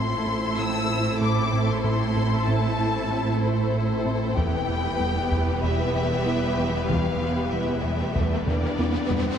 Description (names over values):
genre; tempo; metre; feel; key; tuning
cinematic, hybrid orchestral and electronic film score; 95 BPM; 4/4; straight; unclear; A4 = 440 Hz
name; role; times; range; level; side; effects
warm symphonic violin section; melody; 0.0-9.4 s; C5 to E6; -30 LUFS; left 5 dB; none
warm symphonic violin section; second line; 0.0-9.2 s; G4 to C5; -33 LUFS; left 4 dB; none
rich symphonic viola section; accompaniment; 0.0-9.2 s; E3 to E4; -32 LUFS; right 1 dB; none
swarming drone; sustained chords; 0.0-9.4 s; G3 to B4; -31 LUFS; equal; built-in reverb
thumb-piano-like synth pluck; arpeggios; 0.0-9.3 s; E3 to A4; -35 LUFS; left 4 dB; none
smooth synth bass; riff; 0.0-9.3 s; E2 to A2; -29 LUFS; right 2 dB; none
rich studio cello section; bass; 0.0-9.2 s; E2 to A2; -30 LUFS; right 3 dB; none
warm symphonic double bass section; bass; 0.0-9.2 s; E1 to A1; -31 LUFS; right 2 dB; none
taiko ensemble; drums; 4.4-9.4 s; none; -31 LUFS; left 1 dB; none
riser; sound effects; 6.7-9.4 s; none; -33 LUFS; equal; none
mellow French horn section; sustained chords; 8.5-9.4 s; D4; -30 LUFS; left 3 dB; none
room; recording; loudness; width
wet scoring stage reverb, RT60 1.9 s; none; -22 LUFS; side -8 dB against mid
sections
0.0-9.4 A section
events
riser 6.7-9.4; drum fill 8.5-9.4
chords
0.0 Am; 4.4 Em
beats
0.58 1.21 | 1.84 2.47 3.11 3.74 | 4.37 5.00 5.63 6.26 | 6.89 7.53 8.16 8.79